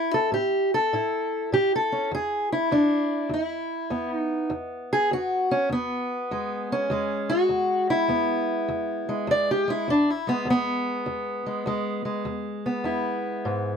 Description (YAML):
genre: acoustic country blues, solo or duo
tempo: 101 BPM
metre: 4/4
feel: swing 66% on 8ths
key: E major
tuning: A4 = 440 Hz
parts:
  - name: fingerpicked steel-string acoustic guitar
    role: solo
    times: 0.0-13.8 s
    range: E2 to D5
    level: -23 LUFS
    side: equal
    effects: none
room: light reverb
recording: none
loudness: -23 LUFS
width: side -6 dB against mid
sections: 0.0-4.5 A section; 4.5-13.8 B section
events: steel-string acoustic guitar solo 4.5-13.8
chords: 0.0 A5; 2.1 E5; 4.5 E